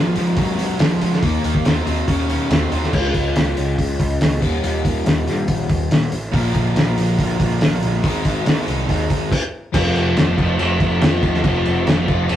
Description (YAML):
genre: classic rock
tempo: 141 BPM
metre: 4/4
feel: straight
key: unclear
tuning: A4 = 440 Hz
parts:
  - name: overdriven semi-hollow guitar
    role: riff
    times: 0.0-12.4 s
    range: Ab2 to F4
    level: -20 LUFS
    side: left 1 dB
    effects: spring reverb
  - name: tight distorted guitar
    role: riff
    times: 0.0-2.9, 6.3-9.3 s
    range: Ab2 to Bb4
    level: -27 LUFS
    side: right 6 dB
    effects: distortion
  - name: fuzz picked electric bass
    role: bass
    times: 0.0-12.4 s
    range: F1 to Bb2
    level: -23 LUFS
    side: equal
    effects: overdrive
  - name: cloth-damped thuddy drum kit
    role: drums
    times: 0.2-12.4 s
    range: crash cymbal, hi-hat, kick drum, snare drum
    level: -19 LUFS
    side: equal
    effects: none
room: light reverb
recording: rough rehearsal-room recording, warm saturation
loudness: -16 LUFS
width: side -11 dB against mid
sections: 0.0-2.9 A section; 2.9-9.7 B section; 9.7-12.4 C section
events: stop 9.3-9.7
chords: 0.0 Ab5; 1.2 Eb5; 2.9 Db; 4.4 Eb; 6.3 Bb; 8.0 Ab; 9.7 F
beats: 0.37 0.80 | 1.22 1.65 2.08 2.50 | 2.93 3.36 3.78 4.21 | 4.63 5.06 5.49 5.91 | 6.34 6.76 7.19 7.61 | 8.04 8.46 8.89 9.31 | 9.74 10.16 10.59 11.02 | 11.44 11.87 12.30